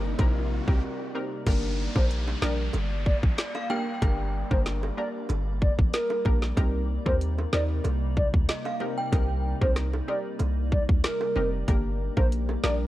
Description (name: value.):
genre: dancehall.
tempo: 94 BPM.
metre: 4/4.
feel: straight.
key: G minor.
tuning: A4 = 440 Hz.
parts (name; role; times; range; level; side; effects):
analog pluck; accompaniment; 0.0-12.9 s; Bb3 to Bb4; -34 LUFS; left 1 dB; chorus.
glassy FM pad; sustained chords; 0.0-12.9 s; C3 to D5; -37 LUFS; left 1 dB; ensemble chorus, built-in reverb, sidechain pumping.
warm 808-style bass; bass; 0.0-12.9 s; F1 to Eb2; -28 LUFS; equal; none.
riser and downlifter; sound effects; 0.0-6.6 s; none; -40 LUFS; equal; none.
island pop drum kit; drums; 0.2-12.8 s; crash cymbal, hi-hat, kick drum, rim click, snare drum; -25 LUFS; equal; none.
bongos; percussion; 0.2-12.8 s; none; -38 LUFS; right 4 dB; none.
hollow clarinet-like synth lead; melody; 2.0-12.7 s; Bb4 to D5; -31 LUFS; equal; chorus.
synth chime; second line; 3.4-4.3, 8.5-9.4 s; D5 to G5; -33 LUFS; right 1 dB; ensemble chorus, phaser, tremolo, tape echo.
room: little or no reverb.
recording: worn, warbling old tape, cassette tape, warbly pitch drift.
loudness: -24 LUFS.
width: side -15 dB against mid.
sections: 0.0-1.5 A section; 1.5-12.9 B section.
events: riser 0.0-1.5; break 0.8-1.5.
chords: 0.0 Cm7; 1.5 Gm; 6.6 Cm7; 11.7 Gm.